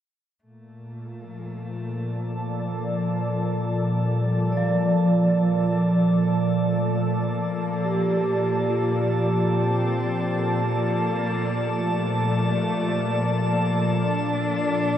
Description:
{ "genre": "ambient", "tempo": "53 BPM", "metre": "3/4", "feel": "straight", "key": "Bb major", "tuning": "A4 = 440 Hz", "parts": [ { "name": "dark cello", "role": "melody", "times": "0.4-15.0 s", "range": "F3 to D4", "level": "-32 LUFS", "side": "left 1 dB", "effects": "tape echo" }, { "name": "ethereal airy pad", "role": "sustained chords", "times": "0.8-15.0 s", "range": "Bb2 to A5", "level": "-25 LUFS", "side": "left 1 dB", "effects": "ensemble chorus, built-in reverb" }, { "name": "organ-like drone", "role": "drone", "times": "1.0-15.0 s", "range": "Bb2 to A4", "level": "-31 LUFS", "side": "equal", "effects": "ensemble chorus, built-in reverb" }, { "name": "drifting glass-harmonics texture", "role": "texture", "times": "1.0-15.0 s", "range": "A5", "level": "-36 LUFS", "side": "right 2 dB", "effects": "chorus, built-in reverb" }, { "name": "vibraphone with medium mallets", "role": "arpeggios", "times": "4.5-15.0 s", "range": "F3 to D5", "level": "-24 LUFS", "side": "right 2 dB", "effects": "tape echo" } ], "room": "wet huge ambient reverb, RT60 7.6 s", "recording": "none", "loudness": "-21 LUFS", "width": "side -10 dB against mid", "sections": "0.4-15.0 A section", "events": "fade-in on synth texture 0.4-15.0; fade-in on cello 0.4-15.0", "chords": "0.4 Bbmaj7" }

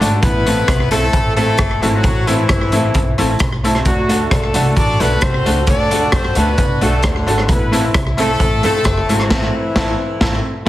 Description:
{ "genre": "ska", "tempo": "132 BPM", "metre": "4/4", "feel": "straight", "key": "unclear", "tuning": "A4 = 440 Hz", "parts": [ { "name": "clear horn section", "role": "melody", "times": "0.0-10.5 s", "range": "D3 to D5", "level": "-19 LUFS", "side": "left 1 dB", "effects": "slapback echo" }, { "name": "electric guitar at the edge of break-up", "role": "accompaniment", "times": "0.0-10.7 s", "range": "A3 to A4", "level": "-23 LUFS", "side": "right 2 dB", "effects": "none" }, { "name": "bright upright piano", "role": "stabs", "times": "0.0-10.7 s", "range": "A3 to A4", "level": "-22 LUFS", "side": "left 2 dB", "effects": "slapback echo" }, { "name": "upright bass", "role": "bass", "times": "0.0-10.7 s", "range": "F#1 to F#2", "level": "-19 LUFS", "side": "equal", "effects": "none" }, { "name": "raw garage drum kit", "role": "drums", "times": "0.0-10.7 s", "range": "crash cymbal, hi-hat, kick drum, rim click, snare drum", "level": "-17 LUFS", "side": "equal", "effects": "slapback echo" } ], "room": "moderate large studio reverb, RT60 1.3 s, small room ambience", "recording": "heavily compressed radio sound, multiband compression", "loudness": "-13 LUFS", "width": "side -14 dB against mid", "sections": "0.0-10.7 A section", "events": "band accent 9.3-10.7", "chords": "0.2 Am; 3.9 D; 7.5 Am" }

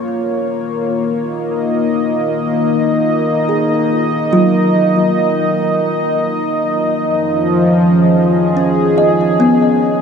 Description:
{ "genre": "ambient", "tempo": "70 BPM", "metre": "4/4", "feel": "straight", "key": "Eb minor", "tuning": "A4 = 440 Hz", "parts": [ { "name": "warm analog pad", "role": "sustained chords", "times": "0.0-10.0 s", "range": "F3 to Eb5", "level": "-14 LUFS", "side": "equal", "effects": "chorus" }, { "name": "kalimba", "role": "arpeggios", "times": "0.0-10.0 s", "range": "Gb3 to Eb5", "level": "-17 LUFS", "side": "equal", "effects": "ping-pong delay" }, { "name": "analog drone", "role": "drone", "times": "0.6-10.0 s", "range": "Eb3 to Eb4", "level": "-20 LUFS", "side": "equal", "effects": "chorus" } ], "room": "wet huge ambient reverb, RT60 8.0 s", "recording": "dark, warm production, lossy compression artefacts", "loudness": "-12 LUFS", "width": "side -6 dB against mid", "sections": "0.0-10.0 A section", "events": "none", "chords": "0.1 Ebmadd9; 6.9 Dbadd9" }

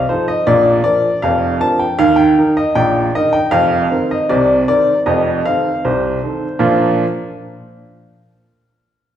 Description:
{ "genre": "ragtime piano", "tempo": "78 BPM", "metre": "2/4", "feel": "straight", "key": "Bb major", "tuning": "A4 = 436 Hz", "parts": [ { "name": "warm upright piano", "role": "solo", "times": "0.0-7.0 s", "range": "F1 to A5", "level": "-12 LUFS", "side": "equal", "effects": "none" } ], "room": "wet recital hall reverb, RT60 1.7 s", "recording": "recorded in a church or concert hall", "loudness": "-12 LUFS", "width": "side -10 dB against mid", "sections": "0.0-6.6 A section; 6.6-8.1 B section", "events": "none", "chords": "0.5 Bb; 2.0 Eb5; 3.5 F7sus4; 5.1 F7; 6.6 Bb" }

